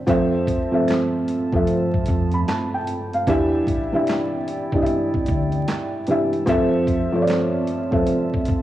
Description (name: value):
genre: lo-fi hip hop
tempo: 75 BPM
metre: 4/4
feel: swing 64% on 16ths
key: unclear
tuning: A4 = 439 Hz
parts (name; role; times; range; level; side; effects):
- felt-muted upright piano; accompaniment; 0.0-8.6 s; E3 to B5; -20 LUFS; equal; cassette tape
- mellow large flute ensemble; sustained chords; 0.0-8.6 s; E4 to A5; -32 LUFS; right 4 dB; cassette tape
- upright bass; bass; 0.1-8.6 s; A1 to F2; -26 LUFS; right 1 dB; none
- dusty soul sampler-style drum kit; drums; 0.1-8.6 s; handclaps, hi-hat, kick drum, snare drum; -26 LUFS; equal; none
- finger snaps; percussion; 0.9-7.5 s; none; -42 LUFS; right 8 dB; none
room: light reverb, small room ambience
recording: home recording on cassette, vinyl crackle, studio ambience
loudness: -18 LUFS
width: side -13 dB against mid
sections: 0.1-8.6 A section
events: none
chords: 0.1 Fmaj7; 3.3 Em7; 6.5 Fmaj7